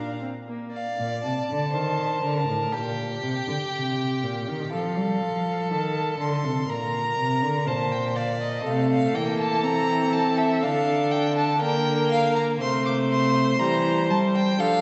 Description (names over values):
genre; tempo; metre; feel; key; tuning
classical, baroque-style fugue for string quartet; 61 BPM; 4/4; straight; Bb major; A4 = 440 Hz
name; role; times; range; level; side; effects
warm violin; melody; 0.0-14.8 s; Eb5 to D6; -30 LUFS; equal; none
rich violin; second line; 0.0-14.8 s; G4 to F5; -30 LUFS; equal; none
warm viola; accompaniment; 0.0-0.7, 8.7-14.8 s; G3 to D4; -31 LUFS; equal; none
warm cello; bass; 0.0-14.8 s; A2 to G3; -29 LUFS; equal; none
room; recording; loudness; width
wet church reverb, RT60 3.1 s; recorded in a church or concert hall, nothing above 7.9 kHz; -24 LUFS; mono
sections
0.7-14.8 A section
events
none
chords
0.0 Bb; 2.7 Eb/Bb; 4.7 F7; 6.7 Bb; 8.7 F/C; 10.6 Bb/D; 12.6 C7